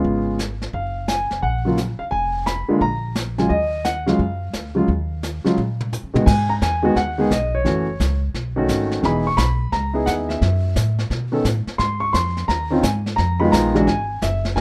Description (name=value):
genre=jazz piano trio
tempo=174 BPM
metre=4/4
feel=swing 65% on 8ths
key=Eb minor, G# minor from 6.3 s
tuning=A4 = 437 Hz
part: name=warm grand piano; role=melody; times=0.0-14.6 s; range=Db3 to C#6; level=-22 LUFS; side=equal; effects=none
part: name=upright bass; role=bass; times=0.0-14.6 s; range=E1 to Db3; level=-26 LUFS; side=equal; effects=none
part: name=vintage brush drum kit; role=drums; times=0.0-14.6 s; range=brushed snare drum, crash cymbal, hi-hat, kick drum, snare drum, toms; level=-27 LUFS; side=equal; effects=none
room=light reverb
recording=none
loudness=-20 LUFS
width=mono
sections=0.0-6.3 A section; 6.3-14.6 B section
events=drum fill 5.6-6.3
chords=0.0 Db7; 0.7 Gbmaj7; 2.1 Fdim; 2.8 Bb5; 3.5 Ebmadd9; 6.3 G#m7; 7.7 F#m7; 8.3 B13; 9.0 Emaj7; 10.4 F#m7; 11.1 B7(no3); 11.8 C#maj9 (rootless); 13.2 Fm7b5; 13.9 Eadd9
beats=0.04 0.39 | 0.74 1.08 1.43 1.77 | 2.12 2.47 2.81 3.16 | 3.50 3.85 4.20 4.54 | 4.89 5.23 5.58 5.92 | 6.27 6.61 6.96 7.30 | 7.65 8.00 8.34 8.69 | 9.03 9.38 9.72 10.07 | 10.41 10.76 11.11 11.45 | 11.80 12.14 12.49 12.84 | 13.18 13.53 13.88 14.22 | 14.57